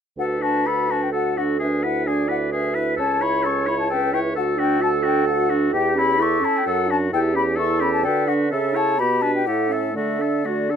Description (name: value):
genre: quick classical-period movement for wind quintet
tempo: 129 BPM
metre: 3/4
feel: rubato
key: D major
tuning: A4 = 436 Hz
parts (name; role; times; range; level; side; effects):
- mellow concert flute; melody; 0.2-10.8 s; D5 to C#6; -24 LUFS; left 7 dB; none
- clear oboe; second line; 0.2-10.8 s; E4 to C#5; -26 LUFS; left 3 dB; none
- warm French horn; accompaniment; 0.2-10.8 s; A3 to F#4; -26 LUFS; equal; none
- warm clarinet; accompaniment; 0.2-10.8 s; F#4 to D5; -26 LUFS; right 8 dB; none
- mellow bassoon; bass; 0.2-10.8 s; C#2 to D3; -25 LUFS; right 3 dB; none
room: little or no reverb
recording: close, detailed microphones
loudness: -18 LUFS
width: side -8 dB against mid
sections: 0.2-10.8 A section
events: none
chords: 0.2 D; 1.6 E7/D; 3.0 A/C#; 4.4 D; 5.7 C#dim/E; 6.7 D/F#; 7.1 A7/E; 8.0 D; 8.5 A/C#; 9.0 G/B; 9.5 A7; 10.0 D